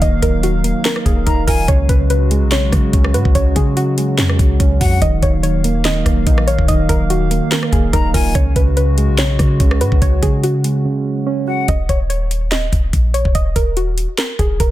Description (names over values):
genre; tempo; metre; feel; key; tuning
hip hop, trap; 144 BPM; 4/4; half-time; Eb minor; A4 = 440 Hz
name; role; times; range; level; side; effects
soft round pluck; melody; 0.0-14.7 s; Gb4 to Eb5; -22 LUFS; equal; chorus, low-pass filter, tape echo
soft electric-piano-like synth keys; accompaniment; 0.0-11.7 s; Db3 to F5; -20 LUFS; right 4 dB; chorus, low-pass filter
hollow soft pad; sustained chords; 0.0-11.7 s; Db3 to F5; -24 LUFS; left 2 dB; chorus
clean 808-style bass; bass; 0.0-14.7 s; Eb1 to Db3; -17 LUFS; equal; none
trap drum kit; drums; 0.0-14.7 s; handclaps, hi-hat, kick drum, rim click, snare drum; -16 LUFS; equal; none
silver concert flute; second line; 1.3-1.7, 4.8-5.0, 7.9-8.3, 11.5-11.7 s; Gb5 to Bb5; -24 LUFS; left 4 dB; tape echo
room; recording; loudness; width
little or no reverb; dense, heavily limited modern master; -13 LUFS; side -15 dB against mid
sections
0.0-11.7 A section; 11.7-14.7 B section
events
break 10.8-11.7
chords
0.0 Ebmadd9; 1.7 Dbsus4; 5.0 Ebmadd9; 8.3 Dbsus4; 11.7 Ebm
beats
| 0.02 0.43 0.85 1.27 | 1.68 2.10 2.52 2.93 | 3.35 3.77 4.18 4.60 | 5.02 5.43 5.85 6.27 | 6.68 7.10 7.52 7.93 | 8.35 8.77 9.18 9.60 | 10.02 10.43 10.85 11.27 | 11.68 12.10 12.52 12.93 | 13.35 13.77 14.18 14.60